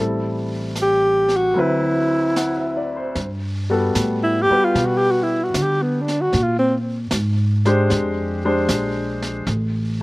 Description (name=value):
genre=jazz ballad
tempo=76 BPM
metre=4/4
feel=swing 68% on 8ths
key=G major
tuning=A4 = 440 Hz
part: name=warm grand piano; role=accompaniment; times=0.0-9.5 s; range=D2 to F#5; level=-22 LUFS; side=left 1 dB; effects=slapback echo
part: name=upright bass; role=bass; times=0.0-10.0 s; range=A1 to D3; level=-23 LUFS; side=equal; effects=none
part: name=breathy alto saxophone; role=melody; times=0.8-6.8 s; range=B3 to G4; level=-18 LUFS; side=equal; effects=slapback echo
part: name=vintage brush drum kit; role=drums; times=0.8-10.0 s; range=brushed snare drum, hi-hat, snare drum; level=-29 LUFS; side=right 1 dB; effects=none
room=little or no reverb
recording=recorded outdoors, with no room sound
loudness=-17 LUFS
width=side -21 dB against mid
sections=0.0-3.2 A section; 3.2-10.0 B section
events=alto saxophone solo 3.2-10.0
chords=0.0 Am7; 1.6 D13; 3.2 Gmaj9; 6.3 Bb13; 9.5 N.C.